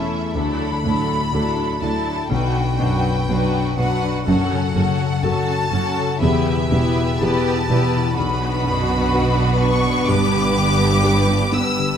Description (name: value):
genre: cinematic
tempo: 62 BPM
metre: 4/4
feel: rubato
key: B minor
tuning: A4 = 442 Hz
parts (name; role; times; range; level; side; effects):
- rich studio violin section; melody; 0.0-12.0 s; E5 to E6; -25 LUFS; left 2 dB; none
- warm symphonic violin section; second line; 0.0-12.0 s; E4 to B4; -24 LUFS; left 1 dB; none
- dark concert grand piano; accompaniment; 0.0-12.0 s; B1 to B4; -23 LUFS; left 1 dB; none
- warm symphonic viola section; accompaniment; 0.0-12.0 s; F#3 to E4; -26 LUFS; equal; none
- concert harp; arpeggios; 0.0-12.0 s; E2 to B4; -26 LUFS; left 8 dB; none
- rich symphonic cello section; bass; 0.4-12.0 s; D2 to B2; -25 LUFS; right 3 dB; none
- warm symphonic double bass section; bass; 0.4-12.0 s; E1 to D2; -24 LUFS; right 4 dB; none
room: moderate scoring stage reverb, RT60 2.2 s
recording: close, detailed microphones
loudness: -16 LUFS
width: side -8 dB against mid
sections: 0.0-12.0 A section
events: none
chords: 0.4 Dadd9; 2.3 Bm; 4.3 F#m; 6.2 Em; 8.2 Bm; 10.1 G